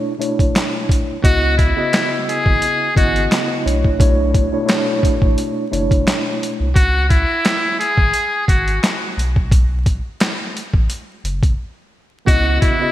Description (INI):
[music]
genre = hip hop, boom-bap hip-hop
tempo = 87 BPM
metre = 4/4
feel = swing 54% on 16ths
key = unclear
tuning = A4 = 440 Hz
[part]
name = mellow tine electric piano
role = accompaniment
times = 0.0-6.7, 12.3-12.9 s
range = B2 to D#5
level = -20 LUFS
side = equal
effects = medium stereo tremolo, high-pass filter, low-pass filter
[part]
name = boom bap sampler-style drum kit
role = drums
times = 0.2-12.8 s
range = handclaps, hi-hat, kick drum, snare drum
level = -16 LUFS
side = equal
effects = gated reverb
[part]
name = trumpet with metal mute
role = melody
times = 1.2-12.9 s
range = E4 to G#4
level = -18 LUFS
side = left 1 dB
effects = high-pass filter, low-pass filter, ping-pong delay
[part]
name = warm sub bass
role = bass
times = 1.2-12.6 s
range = F#1 to C#2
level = -19 LUFS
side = equal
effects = none
[sound]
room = moderate lush hall reverb, RT60 2.5 s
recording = bright 1980s-style digital production, vinyl crackle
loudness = -14 LUFS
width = side -13 dB against mid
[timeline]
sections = 0.0-12.3 A section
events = break 0.0-1.2, 11.6-12.3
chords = 0.0 Bm11; 1.2 C#m11; 3.7 Bm11; 6.8 C#m; 9.2 B5; 12.3 C#m11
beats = 0.55 | 1.24 1.93 2.62 3.31 | 4.00 4.69 5.38 6.07 | 6.76 7.45 8.14 8.83 | 9.52 10.21 10.89 11.58 | 12.27